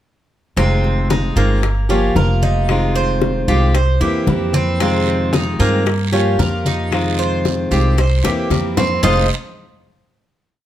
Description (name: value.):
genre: latin, Cuban son and guajira.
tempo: 113 BPM.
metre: 4/4.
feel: straight.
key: F minor.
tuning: A4 = 440 Hz.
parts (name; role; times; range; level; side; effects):
picked steel-string acoustic guitar; accompaniment; 0.6-9.3 s; F2 to G4; -20 LUFS; left 2 dB; none.
Cuban tres; arpeggios; 0.6-9.3 s; Bb3 to Eb5; -21 LUFS; right 3 dB; none.
upright bass; bass; 0.6-9.3 s; F1 to G2; -17 LUFS; equal; none.
bongos; percussion; 0.6-9.2 s; none; -24 LUFS; left 6 dB; none.
congas; percussion; 0.6-9.2 s; none; -24 LUFS; left 1 dB; none.
guiro; percussion; 4.8-9.2 s; none; -31 LUFS; right 8 dB; none.
room: light reverb.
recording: close, detailed microphones.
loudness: -14 LUFS.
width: side -12 dB against mid.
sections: 0.6-9.0 montuno (vamp); 9.0-10.7 final chord.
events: drum fill 8.2-9.0.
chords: 0.6 Fm7; 1.6 Gm7b5; 2.7 Fm7; 3.7 C7; 4.8 Fm7; 5.9 Gm7b5; 6.9 Fm7; 8.0 C7; 9.0 Fm7.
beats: | 0.57 1.10 1.63 2.16 | 2.69 3.22 3.75 4.28 | 4.80 5.33 5.86 6.39 | 6.92 7.45 7.98 8.51 | 9.04.